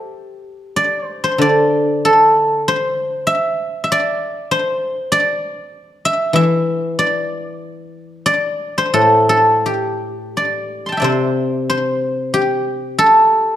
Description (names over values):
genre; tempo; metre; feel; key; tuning
chinese traditional, Chinese solo plucked strings; 84-100 BPM; 4/4; rubato; G zhi mode; A4 = 440 Hz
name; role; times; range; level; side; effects
guzheng; solo; 0.0-13.6 s; A2 to C6; -14 LUFS; equal; slapback echo
room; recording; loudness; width
moderate recital hall reverb, RT60 1.5 s; dark, warm production; -14 LUFS; side -11 dB against mid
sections
0.1-10.3 A section; 10.3-13.6 B section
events
none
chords
none